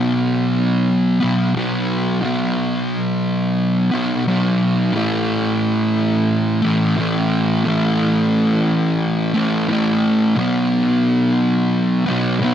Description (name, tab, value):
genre	metal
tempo	88 BPM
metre	4/4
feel	straight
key	unclear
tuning	A4 = 439 Hz
part	fuzz guitar	solo	0.0-12.5 s	A2 to B3	-15 LUFS	equal	distortion
room	light reverb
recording	dry, close 1970s-style studio recording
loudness	-15 LUFS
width	side -9 dB against mid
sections	0.0-12.5 A section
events	none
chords	0.0 B5; 4.9 A5; 10.4 B5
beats	0.20 0.87 1.55 | 2.23 2.90 3.58 4.26 | 4.94 5.62 6.29 6.97 | 7.65 8.33 9.01 9.69 | 10.37 11.05 11.72 12.40